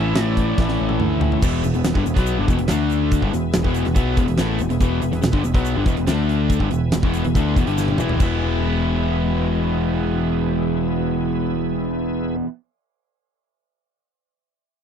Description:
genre	classic rock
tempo	142 BPM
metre	4/4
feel	straight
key	E mixolydian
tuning	A4 = 441 Hz
part	overdriven slide guitar	melody	0.0-1.0 s	E5	-31 LUFS	right 4 dB	slapback echo
part	bright tonewheel organ	sustained chords	0.0-12.4 s	A3 to G#5	-32 LUFS	right 1 dB	overdrive, chorus vibrato, slow rotary speaker
part	cranked stack guitar	riff	0.0-12.5 s	E2 to E4	-24 LUFS	right 14 dB	overdrive
part	crunchy overdriven guitar	riff	0.0-12.5 s	E2 to E4	-23 LUFS	left 15 dB	none
part	picked electric bass	bass	0.0-12.4 s	E1 to D2	-23 LUFS	equal	none
part	huge arena drum kit	drums	0.2-8.3 s	crash cymbal, hi-hat, kick drum, snare drum, toms	-22 LUFS	equal	none
part	tube shaker	percussion	1.4-8.4 s	none	-40 LUFS	left 28 dB	none
room	little or no reverb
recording	dry, close 1970s-style studio recording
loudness	-18 LUFS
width	side -8 dB against mid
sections	0.0-1.4 A section; 1.4-8.2 B section; 8.2-11.6 C section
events	drum fill 0.6-1.4, 7.8-8.2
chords	0.0 A; 1.4 E; 2.7 D5; 3.2 E; 6.1 D5; 6.6 E

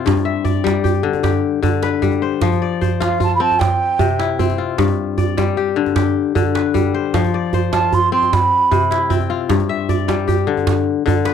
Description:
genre	west african traditional, West African string and xylophone music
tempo	102 BPM (dotted quarters)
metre	12/8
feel	straight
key	unclear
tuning	A4 = 439 Hz
part	kora	arpeggios	0.0-11.3 s	G2 to E5	-18 LUFS	left 10 dB	slapback echo
part	djembe	percussion	0.1-11.3 s	none	-19 LUFS	right 4 dB	none
part	breathy mellow wooden flute	melody	3.0-9.1 s	F5 to C6	-16 LUFS	right 5 dB	none
room	light reverb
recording	dry, close 1970s-style studio recording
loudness	-15 LUFS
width	side -8 dB against mid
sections	0.0-11.3 A section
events	none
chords	0.1 G; 2.4 F5; 3.6 C; 4.8 G; 7.1 F5; 8.3 C; 9.5 G5

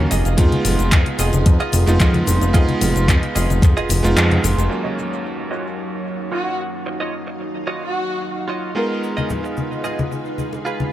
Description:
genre	nu-disco, nu disco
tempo	111 BPM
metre	4/4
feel	straight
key	Eb minor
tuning	A4 = 440 Hz
part	bright electric grand piano	accompaniment	0.0-10.9 s	Eb2 to F4	-24 LUFS	right 2 dB	sidechain pumping, tape echo
part	string machine, full ensemble	sustained chords	0.0-10.9 s	Gb3 to F5	-29 LUFS	equal	ensemble chorus, sidechain pumping
part	fat analog bass	bass	0.0-4.7 s	F1 to F2	-18 LUFS	equal	sidechain pumping
part	direct-recorded clean electric guitar	riff	0.1-10.9 s	F4 to Eb5	-28 LUFS	right 4 dB	lush chorus, low-pass filter, tape echo
part	house drum kit	drums	0.1-4.7 s	handclaps, hi-hat, shaker	-24 LUFS	left 2 dB	low-pass filter on hats, low-pass filter on perc, low-pass filter on snare
part	congas, cabasa and bongos	percussion	0.1-4.7, 9.0-10.9 s	none	-26 LUFS	left 2 dB	tape echo
part	electronic kick drum	drums	0.4-3.7 s	none	-15 LUFS	equal	none
part	dark symphonic violin section	melody	6.3-9.0 s	Gb4 to Bb4	-26 LUFS	equal	analog delay
room	moderate spring reverb, RT60 1.5 s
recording	echo-heavy mix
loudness	-16 LUFS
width	side -13 dB against mid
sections	0.0-4.7 A section; 4.7-10.9 B section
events	kick drops out 4.2-4.7; band accent 4.2; filter sweep on clean electric guitar 4.7-10.9; filter sweep on string machine 4.7-10.9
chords	0.1 Fm7b5; 4.7 Ebm9; 8.8 Fm7b5

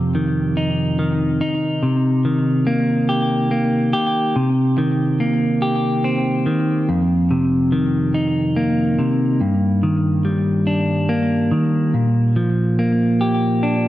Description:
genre	rock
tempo	48 BPM (dotted quarters)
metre	6/8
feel	straight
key	C minor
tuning	A4 = 440 Hz
part	clean electric guitar	solo	0.0-13.9 s	F2 to G4	-16 LUFS	equal	slapback echo
room	light reverb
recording	none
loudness	-16 LUFS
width	side -14 dB against mid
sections	0.0-4.4 A section; 4.4-13.9 B section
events	build-up 0.0-4.4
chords	0.0 F5; 1.8 Cm7; 6.9 F7sus4; 9.4 Ebmaj7/G; 11.9 Bb6

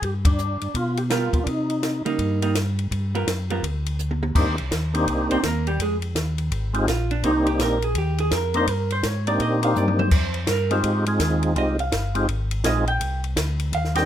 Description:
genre	soul jazz organ trio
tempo	166 BPM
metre	4/4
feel	swing 63% on 8ths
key	C minor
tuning	A4 = 440 Hz
part	percussive tonewheel organ	melody	0.0-2.0, 4.4-14.1 s	G3 to Bb4	-23 LUFS	left 1 dB	slow rotary speaker, overdrive, chorus vibrato
part	mellow tonewheel organ	bass	0.0-14.1 s	G1 to Db3	-24 LUFS	equal	overdrive, chorus vibrato, slow rotary speaker
part	compact cocktail drum kit	drums	0.0-14.1 s	crash cymbal, hi-hat, kick drum, ride cymbal, snare drum, toms	-25 LUFS	left 1 dB	none
part	vintage hollow-body jazz guitar	accompaniment	1.1-14.1 s	G3 to G5	-26 LUFS	right 4 dB	none
room	light reverb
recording	minimal, uncompressed stereo recording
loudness	-20 LUFS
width	side -10 dB against mid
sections	0.0-4.4 A section; 4.4-14.1 B section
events	band accent 0.2; drum fill 4.0-4.4, 9.8-10.1; hollow-body jazz guitar solo 4.4-14.1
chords	0.0 G7#9; 1.5 Cm7; 2.9 G7#9; 4.4 Cm7; 5.8 Fm7; 7.2 Cm7; 10.1 Fm7; 13.0 Cm

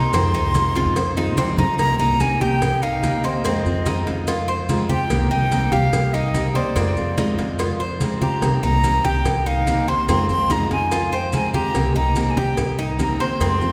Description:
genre	latin, Cuban son and guajira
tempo	145 BPM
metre	4/4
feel	straight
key	C minor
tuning	A4 = 441 Hz
part	breathy silver concert flute	melody	0.0-13.7 s	D5 to C6	-26 LUFS	equal	none
part	picked steel-string acoustic guitar	accompaniment	0.0-13.7 s	C3 to G4	-27 LUFS	equal	none
part	Cuban tres	arpeggios	0.0-13.7 s	C4 to C5	-29 LUFS	equal	none
part	upright bass	bass	0.0-13.7 s	C2 to F3	-26 LUFS	equal	none
part	congas	percussion	0.1-13.7 s	none	-30 LUFS	equal	none
part	cowbell and bongos	percussion	0.1-13.6 s	none	-33 LUFS	equal	none
part	maracas	percussion	0.1-13.7 s	none	-41 LUFS	equal	none
room	wet church reverb, RT60 2.8 s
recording	recorded in a church or concert hall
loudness	-20 LUFS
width	mono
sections	0.0-1.8 A section; 1.8-13.7 B section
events	drum fill 1.4-1.8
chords	0.1 Fm7; 1.8 Cm7; 3.4 Fm7; 5.1 Cm7; 6.8 Fm7; 8.4 Cm7; 10.1 Fm7; 11.7 Cm7

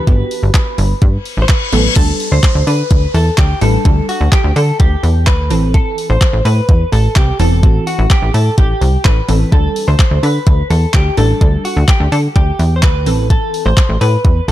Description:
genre	dance-pop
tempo	127 BPM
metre	4/4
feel	straight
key	unclear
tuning	A4 = 440 Hz
part	direct-recorded clean electric guitar	melody	0.0-14.5 s	F#4 to C5	-19 LUFS	equal	lush chorus, dub echo
part	glassy wavetable pluck	accompaniment	0.1-13.8 s	E3 to B4	-21 LUFS	right 1 dB	chorus, sidechain pumping
part	plucky analog bass	bass	0.1-14.5 s	E1 to D3	-13 LUFS	equal	sidechain pumping
part	smooth R&B drum kit	drums	0.1-14.5 s	crash cymbal, handclaps, hi-hat, kick drum	-13 LUFS	equal	none
part	reverse cymbal and downlifter	sound effects	1.3-5.7 s	none	-23 LUFS	left 5 dB	none
room	digital ambience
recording	dark, warm production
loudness	-10 LUFS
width	side -14 dB against mid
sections	0.0-2.0 A section; 2.0-14.5 B section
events	reverse cymbal 1.3-2.0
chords	0.1 Gmaj7; 2.0 Dsus4; 5.5 Am; 9.5 Dsus4; 13.1 Am

